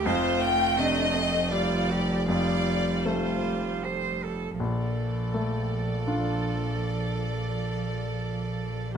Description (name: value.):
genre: neoclassical piano and strings.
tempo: 77-85 BPM.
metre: 3/4.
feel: rubato.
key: Bb major.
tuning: A4 = 439 Hz.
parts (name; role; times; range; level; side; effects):
clear studio violin section; melody; 0.0-8.9 s; C5 to G5; -30 LUFS; left 3 dB; none.
clear cello; second line; 0.0-9.0 s; F3 to C5; -33 LUFS; right 10 dB; none.
bright concert grand piano; accompaniment; 0.0-9.0 s; Bb1 to F4; -32 LUFS; left 2 dB; none.
rich viola; accompaniment; 0.0-8.9 s; G3 to A4; -35 LUFS; right 5 dB; none.
rich double bass; bass; 0.0-9.0 s; F1 to Bb1; -30 LUFS; equal; none.
room: light reverb.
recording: minimal, uncompressed stereo recording.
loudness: -25 LUFS.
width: side -7 dB against mid.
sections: 0.0-4.6 A section; 4.6-9.0 B section.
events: none.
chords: 0.1 Fadd9; 4.6 Bbmaj7.